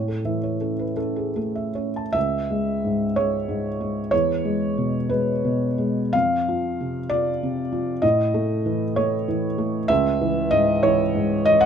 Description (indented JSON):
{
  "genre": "neoclassical minimalist piano",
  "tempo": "49-66 BPM (dotted quarters)",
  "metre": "6/8",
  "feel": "rubato",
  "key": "C# minor",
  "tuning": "A4 = 440 Hz",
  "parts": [
    { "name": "felt-muted upright piano", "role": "solo", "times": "0.0-11.7 s", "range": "C#2 to A5", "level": "-20 LUFS", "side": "equal", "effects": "none" }
  ],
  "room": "light reverb",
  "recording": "minimal, uncompressed stereo recording",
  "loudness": "-20 LUFS",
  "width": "side -7 dB against mid",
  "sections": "0.0-2.1 A section; 2.1-11.7 B section",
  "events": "none",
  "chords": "0.0 A; 2.1 C#m; 4.1 E; 6.1 F5; 8.0 A5; 9.9 C#m"
}